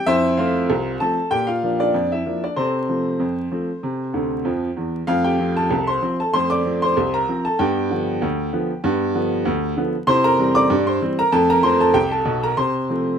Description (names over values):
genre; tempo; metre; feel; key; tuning
ragtime piano; 96 BPM; 2/4; swing 54% on 16ths; F major; A4 = 440 Hz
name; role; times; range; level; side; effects
clear baby grand piano; solo; 0.0-13.2 s; B1 to D6; -18 LUFS; equal; none
room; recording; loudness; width
light reverb; vinyl crackle; -18 LUFS; side -7 dB against mid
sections
0.0-5.1 A section; 5.1-13.2 B section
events
grand piano fill 4.1-5.1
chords
0.1 F; 1.3 Bb; 2.6 F/C; 3.8 C; 5.1 F; 7.6 G7; 10.1 C7; 11.3 F; 12.6 F/C